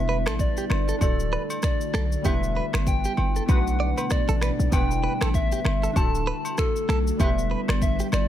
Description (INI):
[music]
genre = afrobeats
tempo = 97 BPM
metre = 4/4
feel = swing 58% on 16ths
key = E minor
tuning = A4 = 441 Hz
[part]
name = soft struck synth lead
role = melody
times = 0.0-8.3 s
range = A4 to A5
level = -30 LUFS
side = left 2 dB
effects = chorus, digital delay
[part]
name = glassy digital keys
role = accompaniment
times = 0.0-8.3 s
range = G3 to B4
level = -32 LUFS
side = right 2 dB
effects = chorus
[part]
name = glassy FM pad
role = sustained chords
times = 0.0-8.3 s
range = B2 to F#4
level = -32 LUFS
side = left 1 dB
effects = ensemble chorus, built-in reverb, sidechain pumping
[part]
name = hard-hitting 808-style bass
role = bass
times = 0.0-8.3 s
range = D1 to B1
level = -25 LUFS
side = equal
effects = none
[part]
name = direct-recorded clean electric guitar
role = riff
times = 0.1-8.1 s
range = G4 to D5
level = -32 LUFS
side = right 5 dB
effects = tremolo
[part]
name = deep house drum kit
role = drums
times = 0.3-8.3 s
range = finger snaps, kick drum, rim click, shaker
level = -25 LUFS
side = equal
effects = none
[part]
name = agogo bells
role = percussion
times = 0.3-8.3 s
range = none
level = -36 LUFS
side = left 1 dB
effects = none
[sound]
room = little or no reverb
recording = none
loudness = -21 LUFS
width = side -11 dB against mid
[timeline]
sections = 0.0-8.3 A section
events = none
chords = 0.0 Em7; 1.0 D; 2.2 Em7; 3.5 Bm7; 4.7 Em7; 6.0 D; 7.2 Em7